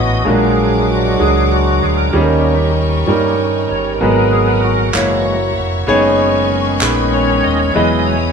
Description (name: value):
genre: slow gospel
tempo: 64 BPM (dotted quarters)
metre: 6/8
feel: straight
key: unclear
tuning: A4 = 440 Hz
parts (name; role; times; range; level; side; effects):
- clear concert grand piano; accompaniment; 0.0-8.3 s; G#2 to F#5; -15 LUFS; equal; none
- bright tonewheel organ; sustained chords; 0.0-8.3 s; D#3 to D#5; -17 LUFS; right 1 dB; fast rotary speaker, overdrive, chorus vibrato
- warm studio string section; sustained chords; 0.0-8.3 s; E4 to D#6; -24 LUFS; left 3 dB; none
- fingered electric bass; bass; 0.0-8.3 s; D#1 to G2; -18 LUFS; equal; none
- group handclap; percussion; 4.9-7.1 s; none; -20 LUFS; right 3 dB; none
room: moderate large studio reverb, RT60 1.1 s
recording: band playing live in one room, lossy compression artefacts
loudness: -12 LUFS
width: side -6 dB against mid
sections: 0.0-8.3 A section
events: tonewheel organ solo 0.0-8.3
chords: 0.3 A#7alt; 2.1 D#7; 4.0 G#m9; 4.9 F#7; 5.9 B69/F#; 7.8 Emaj7